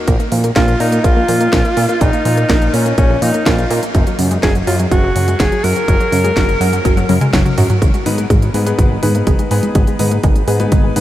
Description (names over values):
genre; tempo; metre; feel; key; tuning
italo disco; 124 BPM; 4/4; straight; G# dorian; A4 = 440 Hz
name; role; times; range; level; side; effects
warm electric grand piano; stabs; 0.0-0.1, 8.1-11.0 s; B3 to B4; -22 LUFS; left 3 dB; analog delay
analog pluck; arpeggios; 0.1-11.0 s; C#3 to A#3; -20 LUFS; right 2 dB; chorus, analog delay
fat analog bass; bass; 0.1-11.0 s; F#1 to A#2; -17 LUFS; equal; none
electronic kick drum; drums; 0.1-10.8 s; none; -15 LUFS; equal; small room ambience
house drum kit; drums; 0.1-11.0 s; congas, hi-hat, snare drum, toms; -20 LUFS; equal; small room ambience
bright alto saxophone; melody; 0.6-7.3 s; C#4 to A#4; -18 LUFS; equal; analog delay
room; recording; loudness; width
moderate huge ambient reverb, RT60 7.0 s; dreamy mix soaked in reverb; -11 LUFS; side -13 dB against mid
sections
0.0-7.8 A section; 7.8-11.0 B section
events
drum fill 6.8-7.8, 7.8-11.0; filter sweep on synth arpeggio sound 7.8-11.0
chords
0.1 A#5; 3.9 F#; 7.8 G#m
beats
| 0.08 0.56 1.04 1.53 | 2.01 2.50 2.98 3.46 | 3.95 4.43 4.91 5.40 | 5.88 6.37 6.85 7.33 | 7.82 8.30 8.79 9.27 | 9.75 10.24 10.72